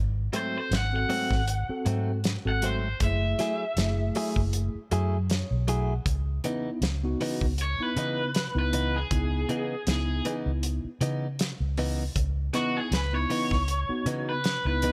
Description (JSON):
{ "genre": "straight-eighth soul blues", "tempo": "79 BPM", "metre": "4/4", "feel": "swing 55% on 16ths", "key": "C# minor", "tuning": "A4 = 440 Hz", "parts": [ { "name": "vintage muted fingered electric bass", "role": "bass", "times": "0.0-14.9 s", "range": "F#1 to C#3", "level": "-30 LUFS", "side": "equal", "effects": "none" }, { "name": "mellow tine electric piano", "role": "accompaniment", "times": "0.3-14.9 s", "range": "A3 to F#5", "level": "-36 LUFS", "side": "equal", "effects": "none" }, { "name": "direct-recorded clean electric guitar", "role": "stabs", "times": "0.3-14.9 s", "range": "G#2 to G#4", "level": "-34 LUFS", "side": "equal", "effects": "none" }, { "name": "warm soul drum kit", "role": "drums", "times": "0.3-14.9 s", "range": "hi-hat, kick drum, snare drum", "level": "-33 LUFS", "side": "equal", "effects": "none" }, { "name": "raw garage guitar", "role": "melody", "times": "0.4-14.9 s", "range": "F#4 to F#5", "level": "-33 LUFS", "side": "equal", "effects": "overdrive" } ], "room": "little or no reverb", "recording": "none", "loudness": "-28 LUFS", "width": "mono", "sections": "0.0-12.2 A section; 12.2-14.9 B section", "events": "tine electric piano fill 4.9-6.1; overdriven electric guitar solo 12.2-14.9", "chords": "0.0 G#7b9; 3.0 F#m9; 6.1 C#m9" }